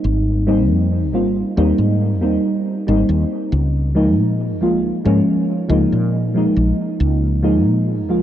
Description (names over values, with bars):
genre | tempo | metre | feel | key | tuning
vaporwave | 69 BPM | 4/4 | straight | unclear | A4 = 442 Hz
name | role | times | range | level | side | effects
mellow FM electric piano | accompaniment | 0.0-8.2 s | F3 to F4 | -17 LUFS | equal | wide subtle chorus, analog delay
woody fretless electric bass | bass | 0.0-8.2 s | Ab1 to Bb2 | -18 LUFS | equal | analog chorus
room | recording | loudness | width
moderate huge ambient reverb, RT60 6.8 s | dark, warm production, cassette tape | -15 LUFS | side -11 dB against mid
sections
0.0-8.2 A section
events
none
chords
0.0 Abmaj9; 3.5 Db69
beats
| 0.04 0.91 1.78 2.65 | 3.52 4.39 5.26 6.13 | 7.00 7.87